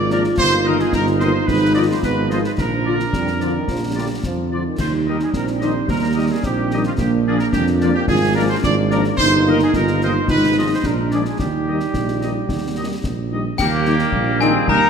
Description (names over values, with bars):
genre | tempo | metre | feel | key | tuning
military-style march for wind band | 109 BPM | 2/4 | straight | Eb major | A4 = 439 Hz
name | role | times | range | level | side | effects
clear trumpet section | melody | 0.0-14.9 s | F4 to Eb5 | -23 LUFS | right 1 dB | none
mellow euphonium | second line | 0.0-13.3 s | Bb3 to F4 | -22 LUFS | right 1 dB | none
mellow trombone section | sustained chords | 0.0-14.9 s | Eb3 to Eb4 | -26 LUFS | right 2 dB | none
mellow tuba | bass | 0.0-14.9 s | G1 to F2 | -21 LUFS | right 3 dB | none
warm woodwind section | second line | 0.1-14.9 s | Bb3 to Eb5 | -28 LUFS | left 3 dB | none
mellow French horn section | accompaniment | 0.1-14.5 s | D3 to F4 | -26 LUFS | left 6 dB | none
concert snare drum, clash cymbals and concert bass drum | drums | 0.1-14.9 s | none | -26 LUFS | left 2 dB | none
glockenspiel with hard plastic mallets | second line | 13.6-14.9 s | G5 to Bb5 | -21 LUFS | left 5 dB | none
room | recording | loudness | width
moderate concert hall reverb, RT60 2.4 s | minimal, uncompressed stereo recording | -16 LUFS | side -6 dB against mid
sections
0.0-13.6 A section; 13.6-14.9 B section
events
none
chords
0.4 Eb/G; 1.5 Abm6; 2.6 Bb; 4.8 Eb; 7.0 Bb; 8.1 Bb7/Ab; 9.2 Eb/G; 10.3 Fm7b5/Ab; 10.8 Bb7; 11.4 Eb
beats
| 0.38 0.93 | 1.48 2.03 | 2.58 3.13 | 3.69 4.24 | 4.79 5.34 | 5.89 6.44 | 6.99 7.54 | 8.09 8.64 | 9.19 9.74 | 10.29 10.84 | 11.39 11.94 | 12.49 13.04 | 13.59 14.13 | 14.68